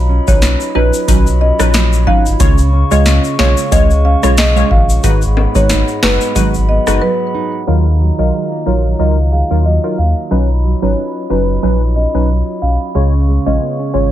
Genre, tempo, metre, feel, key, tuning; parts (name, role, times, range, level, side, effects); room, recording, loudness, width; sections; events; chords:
dancehall; 91 BPM; 4/4; swing 56% on 16ths; Eb minor; A4 = 440 Hz
glass harmonica; sustained chords; 0.0-14.1 s; F4 to Db6; -24 LUFS; left 2 dB; sidechain pumping
nylon-string guitar; arpeggios; 0.0-14.1 s; Ab2 to F4; -21 LUFS; right 6 dB
sub bass with octave; bass; 0.0-14.1 s; Gb1 to Eb2; -13 LUFS; equal
marimba with medium mallets; melody; 0.3-14.1 s; B4 to F5; -19 LUFS; equal; ping-pong delay
wavetable chord stab; accompaniment; 0.3-14.1 s; F#3 to Db5; -18 LUFS; equal; sidechain pumping
booming analog drum machine; drums; 0.3-7.0 s; hi-hat, kick drum, rim click, snare drum; -14 LUFS; equal
egg shaker and timbales; percussion; 0.3-7.0 s; -25 LUFS; left 8 dB
small room ambience; low-pass filter; -10 LUFS; side -12 dB against mid
0.0-7.7 A section; 7.7-14.1 B section
break 7.0-7.7; filter sweep 7.7-14.1
0.0 Badd9; 2.4 Db; 5.0 Abm7; 7.7 Ebmadd9; 10.3 Badd9; 12.9 Db